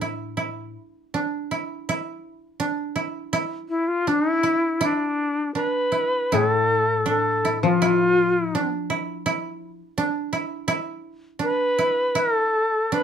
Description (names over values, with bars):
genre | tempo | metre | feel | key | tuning
japanese traditional, Japanese chamber music | 81 BPM | 2/4 | rubato | D kumoi | A4 = 440 Hz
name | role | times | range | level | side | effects
koto | second line | 0.0-13.0 s | D4 to E4 | -26 LUFS | right 4 dB | none
koto | accompaniment | 0.0-0.7, 6.3-9.8 s | A2 to F3 | -26 LUFS | left 6 dB | none
bright reedy shakuhachi | melody | 3.7-8.7, 11.4-13.0 s | D4 to B4 | -20 LUFS | left 1 dB | none
room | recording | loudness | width
moderate studio reverb, RT60 0.6 s | dark, warm production | -21 LUFS | side -8 dB against mid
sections
0.0-6.3 A section; 6.3-13.0 B section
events
none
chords
none